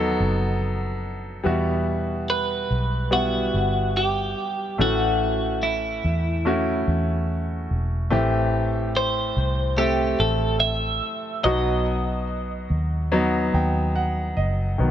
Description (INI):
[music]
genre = pop ballad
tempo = 72 BPM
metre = 4/4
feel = straight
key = E harmonic minor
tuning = A4 = 440 Hz
[part]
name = twelve-string electric guitar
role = melody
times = 0.0-13.9 s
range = E4 to E5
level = -24 LUFS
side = right 1 dB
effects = none
[part]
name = clear concert grand piano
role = accompaniment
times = 0.0-14.9 s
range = A2 to G5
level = -24 LUFS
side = equal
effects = none
[part]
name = vintage muted fingered electric bass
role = bass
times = 0.0-14.9 s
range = E1 to E2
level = -25 LUFS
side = equal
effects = none
[sound]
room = light reverb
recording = none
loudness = -21 LUFS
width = side -10 dB against mid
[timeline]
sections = 0.0-1.5 A section; 1.5-14.8 B section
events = grand piano fill 13.1-14.8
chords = 0.0 B; 1.5 Emadd9; 4.8 A; 8.1 Am7; 11.5 B